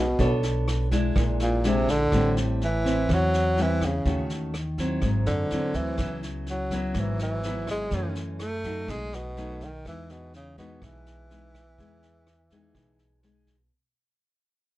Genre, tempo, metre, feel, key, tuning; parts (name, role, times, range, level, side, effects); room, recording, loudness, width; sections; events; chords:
bossa nova; 124 BPM; 4/4; straight; E major; A4 = 441 Hz
breathy tenor saxophone; melody; 0.0-13.2 s; A#2 to A3; -28 LUFS; equal
nylon-string guitar; accompaniment; 0.0-13.7 s; F#2 to C#5; -29 LUFS; left 1 dB
upright bass; bass; 0.0-13.7 s; G#1 to F#2; -28 LUFS; equal
vintage brush drum kit; drums; 0.2-13.5 s; kick drum, rim click, snare drum; -33 LUFS; equal
light reverb; dark, warm production; -23 LUFS; side -16 dB against mid
0.0-13.7 A section
fade-out 0.0-13.7
0.2 Bm9; 1.2 A#7#11; 2.1 Am7; 4.1 D#m7b5; 5.0 G#aug7; 6.0 C#m7; 7.9 F#m7; 8.9 B7; 9.9 Emaj7